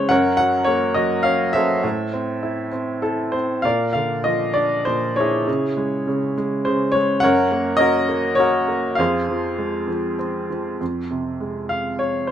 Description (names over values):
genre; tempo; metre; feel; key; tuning
classical, lyrical solo piano; 101 BPM; 3/4; uneven beats, rubato; unclear; A4 = 437 Hz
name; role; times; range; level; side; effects
clear baby grand piano; solo; 0.0-12.3 s; F2 to Gb5; -18 LUFS; equal; none
room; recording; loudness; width
light reverb; none; -18 LUFS; side -10 dB against mid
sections
0.0-10.8 A section; 10.8-12.3 B section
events
none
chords
0.1 Gb; 1.8 Am; 3.6 Bb; 5.5 Dbm; 7.2 Gb; 9.0 Fm